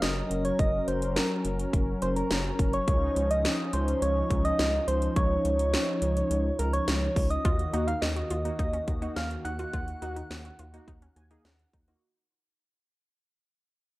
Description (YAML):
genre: synth-pop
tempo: 105 BPM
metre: 4/4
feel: straight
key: unclear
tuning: A4 = 440 Hz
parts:
  - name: soft struck synth lead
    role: melody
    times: 0.0-11.4 s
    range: Bb4 to Gb5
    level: -30 LUFS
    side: right 1 dB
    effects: chorus
  - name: brassy analog pad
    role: sustained chords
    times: 0.0-12.0 s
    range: Eb3 to Bb4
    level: -33 LUFS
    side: left 1 dB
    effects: chorus
  - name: rubbery square bass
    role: bass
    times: 0.0-11.9 s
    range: Gb1 to Eb2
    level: -31 LUFS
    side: equal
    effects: none
  - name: house drum kit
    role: drums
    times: 0.0-12.0 s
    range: hi-hat, kick drum, snare drum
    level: -30 LUFS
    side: equal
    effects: gated reverb
  - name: wide unison pluck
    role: arpeggios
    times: 7.4-12.0 s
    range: Db4 to Gb4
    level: -41 LUFS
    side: left 1 dB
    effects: none
  - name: warm analog keys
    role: accompaniment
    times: 7.7-12.0 s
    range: Bb3 to Ab5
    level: -38 LUFS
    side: left 1 dB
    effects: chorus, phaser
room: light reverb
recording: none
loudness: -25 LUFS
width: side -18 dB against mid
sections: 0.0-7.4 A section; 7.4-12.0 B section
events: fade-out 7.4-12.0; synth keys fill 10.9-12.0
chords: 0.0 Gb; 2.9 Dbadd9; 7.4 Ebm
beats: 0.02 | 0.59 1.16 1.73 2.31 | 2.88 3.45 4.02 4.59 | 5.16 5.73 6.31 6.88 | 7.45 8.02 8.59 9.16 | 9.73 10.31 10.88 11.45